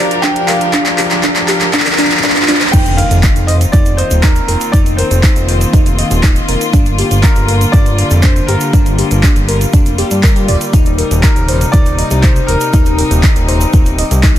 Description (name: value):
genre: progressive house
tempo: 120 BPM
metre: 4/4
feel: straight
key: unclear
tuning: A4 = 439 Hz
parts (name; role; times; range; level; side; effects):
- bright concert grand piano; melody; 0.0-13.2 s; Bb4 to G5; -21 LUFS; equal; dub echo
- warm studio string section; sustained chords; 0.0-14.4 s; C3 to Bb4; -19 LUFS; left 2 dB; sidechain pumping
- glassy wavetable pluck; arpeggios; 0.0-14.3 s; D4 to Eb5; -19 LUFS; left 1 dB; chorus, cassette tape, sidechain pumping, dub echo
- riser, swell and impact; sound effects; 0.0-4.7 s; none; -21 LUFS; equal; none
- backwards swelling texture; texture; 0.0-2.7 s; F5 to F6; -28 LUFS; right 3 dB; none
- pop drum kit; drums; 0.1-14.4 s; crash cymbal, handclaps, hi-hat; -17 LUFS; equal; overdrive
- electronic kick drum; drums; 0.2-14.3 s; none; -10 LUFS; equal; overdrive, high-pass filter on kick
- fat analog bass; bass; 2.7-14.4 s; D1 to G2; -14 LUFS; equal; tube saturation, sidechain pumping
- egg shaker; percussion; 2.7-14.4 s; none; -27 LUFS; right 3 dB; none
room: light reverb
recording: dense, heavily limited modern master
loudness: -9 LUFS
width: side -12 dB against mid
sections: 0.0-2.7 A section; 2.7-14.4 B section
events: build-up 0.0-2.7; drum fill 0.0-2.7; riser 0.0-2.7; filter sweep on synth arpeggio sound 0.0-2.7; swell 1.7-2.7; drop 2.7-14.4; impact 2.7-4.7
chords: 0.0 Gm7; 2.7 F7sus4; 6.7 Gm7; 10.7 Eb6